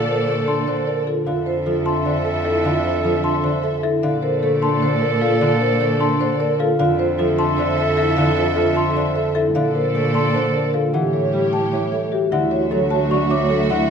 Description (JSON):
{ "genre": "classical, minimalist pattern music", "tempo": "304 BPM (eighths)", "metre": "7/8", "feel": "straight", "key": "F major", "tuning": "A4 = 439 Hz", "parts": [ { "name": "marimba with medium mallets", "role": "melody", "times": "0.0-13.9 s", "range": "G4 to A5", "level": "-23 LUFS", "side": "left 10 dB", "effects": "none" }, { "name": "bright clarinet", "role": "second line", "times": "0.0-13.9 s", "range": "F#4 to A4", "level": "-27 LUFS", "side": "right 3 dB", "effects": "none" }, { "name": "concert harp", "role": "accompaniment", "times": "0.0-13.9 s", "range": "D3 to A3", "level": "-24 LUFS", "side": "equal", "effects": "none" }, { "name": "warm symphonic string section", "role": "sustained chords", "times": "0.0-13.9 s", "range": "F#4 to E5", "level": "-27 LUFS", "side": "left 1 dB", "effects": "none" }, { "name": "vibraphone with soft mallets", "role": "arpeggios", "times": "0.0-13.9 s", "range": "D4 to C#5", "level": "-23 LUFS", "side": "right 9 dB", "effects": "none" }, { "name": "rich cello", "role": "bass", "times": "0.0-13.9 s", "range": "D2 to Bb2", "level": "-26 LUFS", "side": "right 2 dB", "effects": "none" }, { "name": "celesta", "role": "arpeggios", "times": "0.5-13.9 s", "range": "E5 to D6", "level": "-28 LUFS", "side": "left 6 dB", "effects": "none" } ], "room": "wet recital hall reverb, RT60 1.4 s", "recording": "none", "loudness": "-16 LUFS", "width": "side -6 dB against mid", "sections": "0.0-12.3 A section; 12.3-13.9 B section", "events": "none", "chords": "0.0 Bbmaj7; 1.3 Fmaj7; 4.0 Bbmaj7; 6.8 Fmaj7; 9.6 Bbmaj7; 10.9 A7; 12.3 Dadd9" }